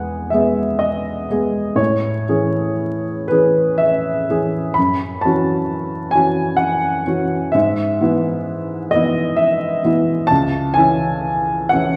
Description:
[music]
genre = classical, romantic nocturne for solo piano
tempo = 55-67 BPM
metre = 3/4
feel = rubato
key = E major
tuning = A4 = 440 Hz
[part]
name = warm upright piano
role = solo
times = 0.0-12.0 s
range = C#2 to B5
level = -18 LUFS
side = equal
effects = none
[sound]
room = wet recital hall reverb, RT60 1.6 s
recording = heard from further back in the room, vinyl crackle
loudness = -18 LUFS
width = mono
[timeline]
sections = 0.0-12.0 A section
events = none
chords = 0.0 E; 1.8 Amaj7; 4.8 F#m7; 7.5 E/G#; 10.3 C#m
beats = 0.82 | 1.79 2.77 3.81 | 4.77 5.70 6.61 | 7.54 8.47 9.39 | 10.30 11.24

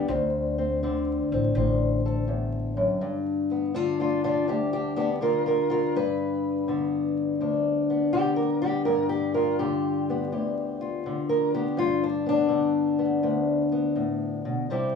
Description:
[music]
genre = acoustic country blues, solo or duo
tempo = 82 BPM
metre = 4/4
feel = swing 67% on 8ths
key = G mixolydian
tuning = A4 = 440 Hz
[part]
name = fingerpicked old ladder-braced acoustic guitar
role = melody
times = 0.0-15.0 s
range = D2 to B4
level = -23 LUFS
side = left 2 dB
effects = none
[part]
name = upright bass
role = bass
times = 0.1-2.9 s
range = A1 to D2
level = -28 LUFS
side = left 1 dB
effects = none
[sound]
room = moderate small room reverb, RT60 0.5 s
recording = band playing live in one room, vinyl crackle, studio ambience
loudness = -23 LUFS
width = side -5 dB against mid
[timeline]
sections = 0.0-3.0 A section; 3.0-15.0 B section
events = steel-string acoustic guitar solo 3.0-15.0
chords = 0.1 D7(no3); 3.0 G7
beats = | 0.10 0.83 1.56 2.29 | 3.02 3.75 4.48 5.21 | 5.94 6.67 7.40 8.13 | 8.86 9.59 10.32 11.05 | 11.79 12.52 13.25 13.98 | 14.71

